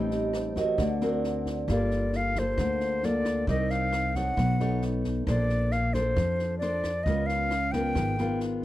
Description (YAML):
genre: bossa nova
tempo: 134 BPM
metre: 4/4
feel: straight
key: G minor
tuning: A4 = 440 Hz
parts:
  - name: nylon-string guitar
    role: accompaniment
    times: 0.0-8.6 s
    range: A2 to D5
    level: -30 LUFS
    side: left 2 dB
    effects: none
  - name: vibraphone with soft mallets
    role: accompaniment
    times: 0.0-1.7 s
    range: G4 to Eb5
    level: -30 LUFS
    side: right 6 dB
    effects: none
  - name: upright bass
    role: bass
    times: 0.0-8.6 s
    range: G1 to F2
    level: -30 LUFS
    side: equal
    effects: none
  - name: compact cocktail drum kit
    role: drums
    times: 0.1-8.6 s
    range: kick drum, rim click, snare drum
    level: -36 LUFS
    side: equal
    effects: none
  - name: reedy concert flute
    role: melody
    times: 1.7-8.4 s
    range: C5 to G5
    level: -29 LUFS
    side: equal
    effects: none
room: small room reverb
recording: dry, close 1970s-style studio recording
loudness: -25 LUFS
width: side -14 dB against mid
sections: 0.0-1.7 A section; 1.7-8.6 B section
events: vibraphone solo 0.0-1.7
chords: 0.0 Am7b5; 0.8 Daug7; 1.7 Gm9; 3.5 Cm9; 4.4 B9; 5.3 Bbmaj9; 7.1 C#6